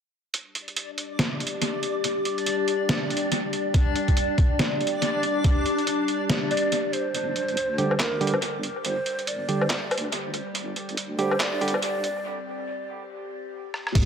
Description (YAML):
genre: deep dubstep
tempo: 141 BPM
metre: 4/4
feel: swing 60% on 16ths, half-time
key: unclear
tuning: A4 = 440 Hz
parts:
  - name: overtone-sweeping drone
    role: sustained chords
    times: 1.1-14.1 s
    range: G3 to G4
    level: -31 LUFS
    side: left 3 dB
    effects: chorus, built-in reverb, phaser
  - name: trip hop sampler-style drum kit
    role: drums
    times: 0.3-14.1 s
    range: crash cymbal, handclaps, hi-hat, rim click, snare drum, woodblock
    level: -28 LUFS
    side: equal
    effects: high-pass filter on hats, high-pass filter on snare, high-pass filter on perc, high-pass filter on cymbals, analog delay
  - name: backwards swelling texture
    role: texture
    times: 0.9-7.2 s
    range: D4 to D5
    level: -30 LUFS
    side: equal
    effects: built-in reverb
  - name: electronic kick drum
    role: drums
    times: 3.7-5.5, 14.0-14.1 s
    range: none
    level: -20 LUFS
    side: equal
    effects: none
  - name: breathy hollow ney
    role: melody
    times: 6.5-12.2 s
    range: Bb4 to D5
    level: -29 LUFS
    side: right 1 dB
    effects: low-pass filter, dub echo
  - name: deep soft wobble bass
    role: bass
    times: 7.1-14.1 s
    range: G1 to D2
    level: -33 LUFS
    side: right 1 dB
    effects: chorus, high-pass filter
  - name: barky tine electric piano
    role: stabs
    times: 7.8-11.7 s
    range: D3 to G4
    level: -30 LUFS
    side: right 3 dB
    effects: dub echo
room: moderate plate reverb, RT60 2.2 s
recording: echo-heavy mix, high-pass filter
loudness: -23 LUFS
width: side -7 dB against mid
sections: 0.3-7.1 A section; 7.1-14.0 B section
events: build-up 7.1-14.0; break 12.3-14.0; drum fill 13.7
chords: 0.3 G5